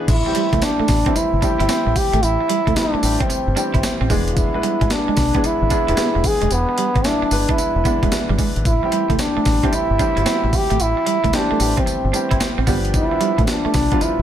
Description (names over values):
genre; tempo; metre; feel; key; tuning
R&B, new jack swing; 112 BPM; 4/4; swing 66% on 16ths; A minor; A4 = 440 Hz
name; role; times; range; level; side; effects
warm baby grand piano; accompaniment; 0.0-14.2 s; E3 to B4; -25 LUFS; left 1 dB; none
warm French horn; melody; 0.1-14.2 s; B3 to G#4; -20 LUFS; equal; none
deep dub fingered electric bass; bass; 0.1-14.2 s; D#1 to C2; -21 LUFS; equal; none
breakbeat sampler-style drum kit; drums; 0.1-14.2 s; crash cymbal, hi-hat, kick drum, snare drum, tambourine; -21 LUFS; equal; overdrive
electric guitar at the edge of break-up; riff; 0.3-14.0 s; G3 to E4; -26 LUFS; right 8 dB; ensemble chorus
room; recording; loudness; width
little or no reverb; none; -16 LUFS; side -10 dB against mid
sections
0.1-14.2 A section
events
none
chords
0.1 Am7; 4.1 E7; 8.7 Am7; 12.7 G7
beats
| 0.08 0.62 1.16 1.69 | 2.23 2.76 3.30 3.83 | 4.37 4.91 5.44 5.98 | 6.51 7.05 7.58 8.12 | 8.65 9.19 9.73 10.26 | 10.80 11.33 11.87 12.40 | 12.94 13.48 14.01